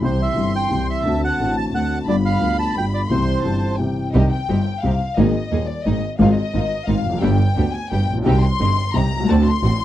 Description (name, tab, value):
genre	tango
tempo	175 BPM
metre	3/4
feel	rubato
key	C major, C minor from 4.1 s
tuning	A4 = 441 Hz
part	bandoneon	melody	0.0-3.8 s	C5 to A5	-23 LUFS	right 4 dB	none
part	dark studio violin section	second line	0.0-9.8 s	D5 to C6	-26 LUFS	left 4 dB	none
part	warm upright piano	accompaniment	0.0-9.8 s	Eb1 to Ab4	-21 LUFS	left 3 dB	none
part	warm double bass	bass	0.0-9.8 s	F1 to Eb2	-21 LUFS	right 2 dB	none
part	rich studio string section	stabs	4.1-9.8 s	Ab3 to Ab4	-27 LUFS	right 4 dB	none
room	little or no reverb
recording	dry, close 1970s-style studio recording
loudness	-17 LUFS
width	side -13 dB against mid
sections	0.0-4.1 A section; 4.1-9.8 B section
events	break 3.8-4.1; violin section solo 4.1-9.8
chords	0.0 C; 1.1 D7; 2.1 G7; 3.1 C; 4.1 Cm; 5.2 Absus2; 6.2 Fm7/Ab; 7.2 G; 8.3 Cm; 9.3 D7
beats	| 0.03 0.37 0.72 | 1.06 1.40 1.75 | 2.09 2.43 2.77 | 3.11 3.45 3.80 | 4.14 4.49 4.83 | 5.17 5.51 5.85 | 6.19 6.53 6.88 | 7.22 7.56 7.91 | 8.26 8.60 8.94 | 9.28 9.62